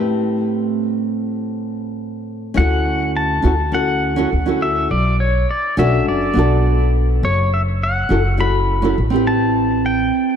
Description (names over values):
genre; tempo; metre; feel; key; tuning
sunset chillout; 103 BPM; 4/4; straight; D major; A4 = 440 Hz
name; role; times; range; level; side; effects
nylon-string guitar; accompaniment; 0.0-10.4 s; A2 to B4; -19 LUFS; moving between left 3 dB and right 4 dB; auto-pan, digital delay
pedal steel guitar; melody; 2.6-10.4 s; C#5 to B5; -21 LUFS; left 2 dB; digital delay
upright bass; bass; 2.6-10.1 s; F#1 to D2; -18 LUFS; equal; none
room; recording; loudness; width
moderate lush hall reverb, RT60 2.7 s; dark, warm production; -15 LUFS; side -8 dB against mid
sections
0.0-2.6 A section; 2.6-10.4 B section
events
filter sweep on nylon-string guitar 0.0-2.6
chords
0.0 Am7; 2.6 Dmaj7; 4.9 Bm7; 7.2 F#m7; 9.3 Am7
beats
| 0.24 0.82 1.41 1.99 | 2.57 3.15 3.74 4.32 | 4.90 5.48 6.07 6.65 | 7.23 7.81 8.40 8.98 | 9.56 10.14